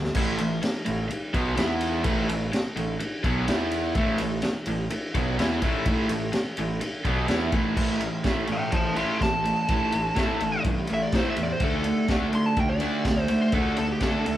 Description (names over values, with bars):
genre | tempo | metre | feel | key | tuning
garage rock duo or trio | 125 BPM | 4/4 | straight | A minor | A4 = 440 Hz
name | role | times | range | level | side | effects
raw garage guitar | riff | 0.0-14.4 s | G2 to E4 | -26 LUFS | right 1 dB | overdrive
fuzz picked electric bass | bass | 0.0-14.4 s | A1 to D3 | -33 LUFS | equal | overdrive
crunchy breakbeat drum kit | drums | 0.0-14.4 s | crash cymbal, kick drum, ride cymbal, snare drum | -28 LUFS | equal | none
fuzz lead guitar | melody | 8.5-14.4 s | G4 to C6 | -28 LUFS | equal | distortion
room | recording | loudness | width
moderate large studio reverb, RT60 0.9 s | band playing live in one room | -23 LUFS | side -13 dB against mid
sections
0.2-7.8 A section; 7.8-14.4 B section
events
drum fill 0.0; lead electric guitar solo 7.8-14.4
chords
0.2 A5; 1.6 E5; 2.1 A5; 3.5 E5; 4.0 A5; 11.6 D5